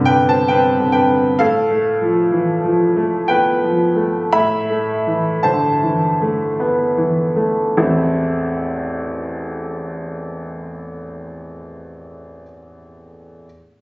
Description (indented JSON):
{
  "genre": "neoclassical minimalist piano",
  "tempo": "50-68 BPM",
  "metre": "3/4",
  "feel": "rubato",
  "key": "A minor",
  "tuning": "A4 = 439 Hz",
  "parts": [
    { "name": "clear baby grand piano", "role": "solo", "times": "0.0-13.5 s", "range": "A1 to B5", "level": "-15 LUFS", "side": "equal", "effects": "none" }
  ],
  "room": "moderate studio ambience, RT60 0.5 s",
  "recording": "recorded on a phone in the room, club reverb, compression, nothing above 7.8 kHz",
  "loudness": "-15 LUFS",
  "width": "side -26 dB against mid",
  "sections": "0.0-7.8 A section; 7.8-11.3 B section",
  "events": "slowing down 0.1-7.8",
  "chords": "0.0 G; 1.4 F/A; 4.4 Am",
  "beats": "0.51 | 1.40 2.31 3.30 | 4.35 5.45 6.58 | 7.77 8.92 10.09"
}